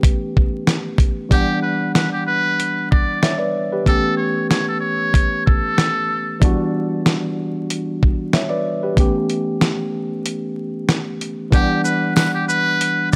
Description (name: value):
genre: hip hop, boom-bap hip-hop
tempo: 94 BPM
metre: 4/4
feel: swing 57% on 16ths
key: E dorian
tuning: A4 = 440 Hz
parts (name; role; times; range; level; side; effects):
- tine electric piano; accompaniment; 0.0-13.2 s; E3 to F#5; -24 LUFS; equal; high-pass filter, low-pass filter
- dusty soul sampler-style drum kit; drums; 0.0-13.2 s; hi-hat, kick drum, shaker, snare drum; -19 LUFS; equal; none
- trumpet with metal mute; melody; 1.3-6.4, 11.5-13.2 s; G4 to D5; -23 LUFS; equal; high-pass filter, low-pass filter, tape echo
- tambourine; percussion; 12.2-12.3 s; none; -36 LUFS; equal; none
room: light reverb, digital ambience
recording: vinyl crackle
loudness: -19 LUFS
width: mono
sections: 0.0-11.5 A section; 11.5-13.2 B section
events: break 10.2-11.5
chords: 0.0 A7; 1.3 Em9; 3.9 A7; 6.4 Em9; 9.0 A7; 11.5 Em9